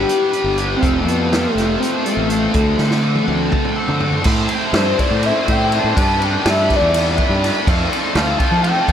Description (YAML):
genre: psychedelic rock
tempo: 246 BPM (eighths)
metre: 7/8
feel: straight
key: A minor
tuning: A4 = 435 Hz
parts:
  - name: pulse-width lead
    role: melody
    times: 0.0-8.9 s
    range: A3 to A5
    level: -19 LUFS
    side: left 1 dB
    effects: chorus, diffuse ambient delay
  - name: biting overdriven guitar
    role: riff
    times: 0.0-8.9 s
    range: A2 to C5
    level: -20 LUFS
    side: right 1 dB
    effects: flanger
  - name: fuzz fingered electric bass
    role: bass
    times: 0.0-8.9 s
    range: F1 to F3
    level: -21 LUFS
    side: equal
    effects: overdrive
  - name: vintage drum kit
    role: drums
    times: 0.1-8.9 s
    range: crash cymbal, hi-hat, kick drum, ride cymbal, snare drum, toms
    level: -21 LUFS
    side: equal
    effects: none
room: moderate huge ambient reverb, RT60 7.7 s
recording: dreamy mix soaked in reverb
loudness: -14 LUFS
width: side -9 dB against mid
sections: 0.0-4.3 A section; 4.3-8.9 B section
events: drum fill 2.8-4.3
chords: 0.0 G; 0.8 F; 2.5 D7; 4.3 Am; 6.0 G; 7.7 Fadd9